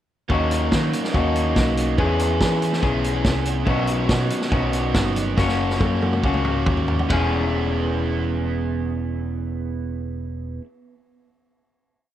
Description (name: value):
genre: indie rock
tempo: 140 BPM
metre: 4/4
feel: straight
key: E lydian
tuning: A4 = 440 Hz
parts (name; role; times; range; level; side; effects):
- biting overdriven guitar; riff; 0.3-10.7 s; E3 to G#4; -26 LUFS; right 7 dB; lush chorus, digital delay
- electric guitar through a small old amp; riff; 0.3-10.7 s; D#3 to G#4; -24 LUFS; left 5 dB; none
- picked electric bass; bass; 0.3-10.6 s; E1 to E3; -24 LUFS; equal; none
- vintage drum kit; drums; 0.3-7.2 s; hi-hat, kick drum, ride cymbal, snare drum, toms; -24 LUFS; equal; none
room: light reverb, small room ambience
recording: rough home demo mix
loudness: -19 LUFS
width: side -11 dB against mid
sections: 0.3-7.1 pre-chorus; 7.1-10.5 final chord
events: drum fill 5.4-7.1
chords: 0.3 D#m7; 2.0 E6; 3.7 Badd9; 5.4 F#; 7.1 E6